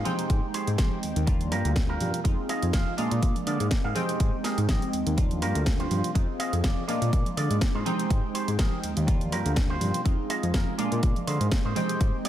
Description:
filtered disco house; 123 BPM; 4/4; swing 54% on 16ths; A4 = 440 Hz
funky polysynth comp; accompaniment; 0.0-12.3 s; G3 to G5; -31 LUFS; right 1 dB; chorus, phaser, sidechain pumping, low-pass filter
electric guitar with an envelope filter; riff; 0.0-12.3 s; F4 to F5; -33 LUFS; right 3 dB; sidechain pumping, low-pass filter
fat analog bass; bass; 0.0-12.1 s; F1 to D3; -28 LUFS; equal; sidechain pumping, low-pass filter
house drum kit; drums; 0.1-12.3 s; hi-hat, snare drum; -35 LUFS; equal; sidechain pumping on hats
congas and tube shaker; percussion; 0.1-12.2 s; -36 LUFS; right 1 dB; sidechain pumping on perc, low-pass filter on perc
electronic kick drum; drums; 0.3-12.1 s; -25 LUFS; equal
light reverb, digital ambience; -24 LUFS; side -12 dB against mid
0.0-12.3 A section
0.1 Abmaj7; 1.3 Gm7; 2.2 Fm7; 3.0 Bb7; 4.0 Abmaj7; 5.2 Gm7; 6.2 Fm7; 6.9 Bb7; 7.9 Abmaj7; 9.1 Gm7; 10.1 Fm7; 10.8 Bb7; 11.8 Abmaj7

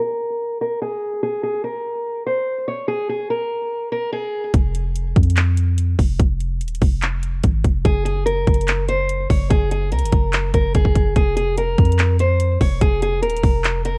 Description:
hip hop, trap; 145 BPM; 4/4; half-time; F phrygian; A4 = 440 Hz
picked old ladder-braced acoustic guitar; melody; 0.0-4.5, 7.8-14.0 s; Ab4 to Db5; -24 LUFS; equal; low-pass filter, delay
warm 808-style bass; bass; 4.5-14.0 s; Eb1 to F2; -22 LUFS; equal
trap drum kit; drums; 4.5-13.9 s; handclaps, hi-hat, kick drum; -20 LUFS; equal
small room ambience; worn, warbling old tape, cassette tape, warbly pitch drift; -19 LUFS; mono
0.0-4.5 A section; 4.5-14.0 B section
filter sweep on steel-string acoustic guitar 0.0-4.5
0.0 N.C.; 7.9 Gb; 11.2 Fm

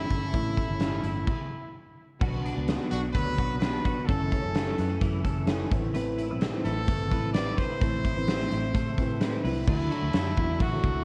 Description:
jangly indie pop; 129 BPM; 4/4; straight; A4 = 438 Hz
brilliant trumpet; melody; 0.0-11.0 s; E4 to D5; -36 LUFS; equal
fingerpicked plugged-in steel-string acoustic guitar; accompaniment; 0.0-11.0 s; F#2 to B4; -35 LUFS; equal
twelve-string electric guitar; arpeggios; 0.0-11.0 s; F#2 to B4; -39 LUFS; equal; ensemble chorus
vintage muted fingered electric bass; bass; 0.0-11.0 s; F#1 to A2; -34 LUFS; equal
big rock drum kit; drums; 0.1-10.9 s; crash cymbal, hi-hat, kick drum, ride cymbal, snare drum; -31 LUFS; equal
moderate large studio reverb, RT60 0.8 s, small room ambience; worn, warbling old tape, cassette tape, warbly pitch drift; -28 LUFS; mono
0.0-2.2 A section; 2.2-9.7 B section; 9.7-11.0 C section
stop 1.3-2.2
0.0 A; 2.2 Bm; 4.1 F#m7; 5.7 Amadd9; 9.7 Dadd9

